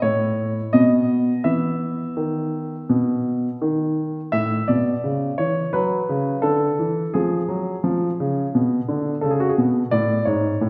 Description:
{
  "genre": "classical-period piano sonatina",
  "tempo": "85 BPM",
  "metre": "4/4",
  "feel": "straight",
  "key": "F# minor from 4.3 s",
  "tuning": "A4 = 440 Hz",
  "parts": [
    { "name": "warm grand piano", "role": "solo", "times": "0.0-10.7 s", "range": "G#2 to E5", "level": "-21 LUFS", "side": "equal", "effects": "none" }
  ],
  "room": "wet recital hall reverb, RT60 1.6 s",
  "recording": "heard from further back in the room",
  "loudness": "-21 LUFS",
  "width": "mono",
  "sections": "0.0-4.3 A section; 4.3-10.7 B section",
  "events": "none",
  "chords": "0.0 A; 0.7 N.C.; 1.4 E5; 4.3 F#m/A (rootless); 7.1 C#7; 9.9 F#m (rootless)",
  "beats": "0.02 0.72 | 1.44 2.17 2.89 3.61 | 4.33 5.04 5.74 6.44 | 7.14 7.84 8.54 9.23 | 9.92 10.61"
}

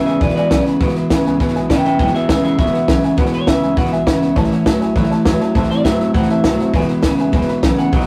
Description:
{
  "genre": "rockabilly",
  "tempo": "202 BPM",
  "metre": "4/4",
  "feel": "straight",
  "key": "E major",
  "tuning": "A4 = 440 Hz",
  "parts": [
    { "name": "electric guitar through a small old amp", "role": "melody", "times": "0.0-8.1 s", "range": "G#4 to G5", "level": "-24 LUFS", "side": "equal", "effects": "none" },
    { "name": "picked steel-string acoustic guitar", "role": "accompaniment", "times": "0.0-8.1 s", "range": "E2 to F#4", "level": "-27 LUFS", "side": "equal", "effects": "none" },
    { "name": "electric guitar through a small old amp", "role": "riff", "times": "0.0-8.1 s", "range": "E2 to F#3", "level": "-19 LUFS", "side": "equal", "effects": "none" },
    { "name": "tack piano", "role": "accompaniment", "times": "0.1-8.0 s", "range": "B4 to B5", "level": "-30 LUFS", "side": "equal", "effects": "none" },
    { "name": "upright bass", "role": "bass", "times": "0.1-8.0 s", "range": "E1 to G2", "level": "-27 LUFS", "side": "equal", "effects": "none" },
    { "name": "compact cocktail drum kit", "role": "drums", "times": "0.1-8.0 s", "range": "hi-hat, kick drum, snare drum", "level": "-20 LUFS", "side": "equal", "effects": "none" }
  ],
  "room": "moderate small room reverb, RT60 0.5 s",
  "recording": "rough rehearsal-room recording, warm saturation",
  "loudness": "-15 LUFS",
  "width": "mono",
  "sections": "0.0-8.1 A section",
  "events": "none",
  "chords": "0.0 E; 4.4 A; 5.6 Am7; 6.7 E",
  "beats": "0.21 0.51 | 0.81 1.10 1.40 1.70 | 2.00 2.29 2.59 2.88 | 3.18 3.48 3.77 4.07 | 4.37 4.66 4.96 5.26 | 5.55 5.85 6.15 6.45 | 6.74 7.04 7.34 7.63 | 7.93"
}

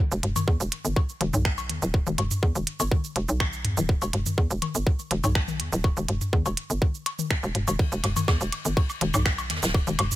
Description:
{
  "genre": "minimal techno",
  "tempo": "123 BPM",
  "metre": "4/4",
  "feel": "straight",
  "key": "E minor",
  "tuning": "A4 = 441 Hz",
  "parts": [
    { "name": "hollow knocking FM bass", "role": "bass", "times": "0.1-10.1 s", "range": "D1 to E2", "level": "-27 LUFS", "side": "equal", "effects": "sidechain pumping" },
    { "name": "minimal click drum kit", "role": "drums", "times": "0.1-10.2 s", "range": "finger snaps, hi-hat, shaker", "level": "-31 LUFS", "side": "right 3 dB", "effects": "none" },
    { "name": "electronic toms, cowbell and woodblock", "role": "percussion", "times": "0.2-10.2 s", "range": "none", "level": "-29 LUFS", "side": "left 2 dB", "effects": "overdrive" },
    { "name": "electronic kick drum", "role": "drums", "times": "0.5-9.8 s", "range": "none", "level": "-22 LUFS", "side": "equal", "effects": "none" },
    { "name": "jazz brush drum kit", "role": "drums", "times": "7.8-10.2 s", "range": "ride cymbal, snare drum", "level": "-35 LUFS", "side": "left 1 dB", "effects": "sidechain pumping on cymbals, high-pass filter on cymbals, high-pass filter on snare, high-pass filter on room" }
  ],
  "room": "little or no reverb",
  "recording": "none",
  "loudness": "-23 LUFS",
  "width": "side -14 dB against mid",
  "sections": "0.0-10.2 A section",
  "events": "none",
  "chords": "none",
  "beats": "0.48 0.96 1.45 | 1.94 2.43 2.92 3.40 | 3.89 4.38 4.87 5.35 | 5.84 6.33 6.82 7.30 | 7.79 8.28 8.77 9.26 | 9.74"
}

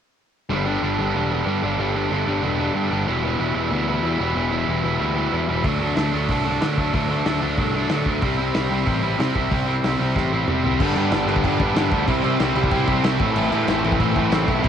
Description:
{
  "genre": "punk rock",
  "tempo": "186 BPM",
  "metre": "4/4",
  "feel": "straight",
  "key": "unclear",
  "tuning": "A4 = 438 Hz",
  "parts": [
    { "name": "distorted electric guitar", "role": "riff", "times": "0.5-14.7 s", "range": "E2 to D4", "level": "-26 LUFS", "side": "left 14 dB", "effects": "distortion, cassette tape" },
    { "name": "distorted electric guitar", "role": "riff", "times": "0.5-14.7 s", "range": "G2 to E4", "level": "-23 LUFS", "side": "right 7 dB", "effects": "distortion, cassette tape" },
    { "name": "growling picked electric bass", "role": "bass", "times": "0.5-14.7 s", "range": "E1 to D3", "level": "-25 LUFS", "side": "equal", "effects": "overdrive" },
    { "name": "loose indie drum kit", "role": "drums", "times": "5.6-14.7 s", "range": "crash cymbal, hi-hat, kick drum, snare drum, toms", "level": "-25 LUFS", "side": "equal", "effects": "cassette tape" },
    { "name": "distorted electric guitar", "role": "riff", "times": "10.8-14.7 s", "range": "G2 to E4", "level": "-24 LUFS", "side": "left 1 dB", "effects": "distortion, cassette tape" }
  ],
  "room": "little or no reverb",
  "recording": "home recording on cassette",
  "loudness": "-19 LUFS",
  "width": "side -8 dB against mid",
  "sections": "0.5-10.8 A section; 10.8-14.7 B section",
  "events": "drum fill 10.2-10.8",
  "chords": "0.5 Em; 5.6 D; 8.2 C; 10.8 G; 12.1 C; 13.2 Am",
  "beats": "| 0.49 0.82 1.14 1.46 | 1.78 2.11 2.43 2.75 | 3.07 3.40 3.72 4.04 | 4.36 4.68 5.00 5.33 | 5.65 5.97 6.29 6.62 | 6.94 7.26 7.58 7.90 | 8.22 8.55 8.87 9.19 | 9.51 9.84 10.16 10.48 | 10.80 11.12 11.44 11.76 | 12.08 12.40 12.72 13.04 | 13.36 13.68 14.00 14.32 | 14.64"
}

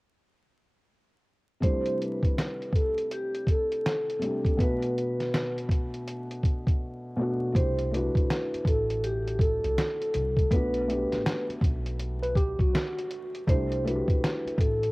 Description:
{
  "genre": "lo-fi hip hop",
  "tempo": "81 BPM",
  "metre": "4/4",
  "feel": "swing 63% on 16ths",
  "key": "unclear",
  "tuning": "A4 = 439 Hz",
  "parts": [
    { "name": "vibraphone with soft mallets", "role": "melody", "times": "1.6-14.9 s", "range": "G4 to C5", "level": "-30 LUFS", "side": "equal", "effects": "low-pass filter, cassette tape" },
    { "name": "felt-muted upright piano", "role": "accompaniment", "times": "1.6-14.9 s", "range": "B2 to G4", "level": "-32 LUFS", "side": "left 1 dB", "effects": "low-pass filter, cassette tape" },
    { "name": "dusty soul sampler-style drum kit", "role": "drums", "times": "1.6-14.9 s", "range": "hi-hat, kick drum, snare drum", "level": "-27 LUFS", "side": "equal", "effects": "cassette tape" },
    { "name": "upright bass", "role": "bass", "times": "7.6-14.9 s", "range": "A1 to C2", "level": "-32 LUFS", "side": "equal", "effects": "none" },
    { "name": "tine electric piano", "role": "second line", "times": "12.2-13.4 s", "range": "F#4 to B4", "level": "-32 LUFS", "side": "equal", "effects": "medium stereo tremolo, low-pass filter, cassette tape, tape echo" }
  ],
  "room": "light reverb, small room ambience",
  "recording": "home recording on cassette, vinyl crackle",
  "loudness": "-25 LUFS",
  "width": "side -23 dB against mid",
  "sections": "1.6-7.5 A section; 7.5-14.9 B section",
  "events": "silent gap 6.8-7.5",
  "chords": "1.6 C6; 4.6 Bm7; 7.5 C6; 10.5 Gmaj9; 13.5 C6",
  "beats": "| 1.62 2.36 3.10 3.85 | 4.59 5.33 6.07 6.81 | 7.55 8.29 9.03 9.77 | 10.51 11.25 11.99 12.73 | 13.47 14.22"
}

